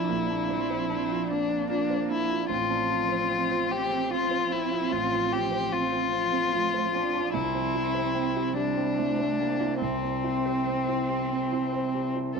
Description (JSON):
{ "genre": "neoclassical piano and strings", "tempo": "50 BPM (dotted quarters)", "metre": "6/8", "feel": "rubato", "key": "unclear", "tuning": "A4 = 441 Hz", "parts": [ { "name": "warm violin", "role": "melody", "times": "0.0-12.4 s", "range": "C4 to G4", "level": "-27 LUFS", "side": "left 6 dB", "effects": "none" }, { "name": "warm cello", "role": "second line", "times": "0.0-12.4 s", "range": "G3 to D4", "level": "-34 LUFS", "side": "right 12 dB", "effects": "tape echo" }, { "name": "warm concert grand piano", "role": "accompaniment", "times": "0.0-12.4 s", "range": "A1 to C5", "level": "-31 LUFS", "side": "right 10 dB", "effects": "none" }, { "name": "ethereal airy pad", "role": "sustained chords", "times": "0.0-12.4 s", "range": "F3 to D5", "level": "-37 LUFS", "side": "left 1 dB", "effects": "ensemble chorus, built-in reverb, tremolo" }, { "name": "concert harp", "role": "arpeggios", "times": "0.0-12.4 s", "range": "C4 to Bb5", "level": "-37 LUFS", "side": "right 8 dB", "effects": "tape echo" } ], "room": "moderate echo chamber reverb, RT60 1.9 s, studio ambience", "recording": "1960s-style stereo with parts hard left and right", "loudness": "-25 LUFS", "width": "side -5 dB against mid", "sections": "0.0-12.4 A section", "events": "none", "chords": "0.0 Bbadd9; 2.5 F/A; 7.3 C" }